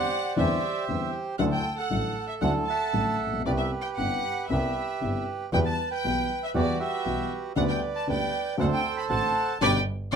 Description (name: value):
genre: tango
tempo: 117 BPM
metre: 4/4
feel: rubato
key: unclear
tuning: A4 = 440 Hz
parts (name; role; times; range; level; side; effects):
- bandoneon; melody; 0.0-9.8 s; F#4 to B5; -29 LUFS; right 5 dB; none
- clear chamber violin section; second line; 0.0-10.2 s; B4 to B5; -31 LUFS; left 2 dB; none
- dark upright piano; accompaniment; 0.0-10.2 s; G1 to G4; -29 LUFS; left 4 dB; none
- rich double bass; bass; 0.0-10.2 s; G1 to E2; -31 LUFS; right 2 dB; none
room: moderate club reverb, RT60 0.6 s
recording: minimal, uncompressed stereo recording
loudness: -24 LUFS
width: side -7 dB against mid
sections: 0.0-10.2 A section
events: band accent 9.6-10.2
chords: 0.0 Cadd9/E; 1.4 Dadd9; 3.5 Cmaj7; 5.5 Emadd9; 7.6 G/D; 8.6 D7; 9.6 G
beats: 0.37 0.88 | 1.39 1.91 2.42 2.94 | 3.46 3.98 4.50 5.01 | 5.53 6.04 6.55 7.06 | 7.57 8.08 8.59 9.10 | 9.61 10.13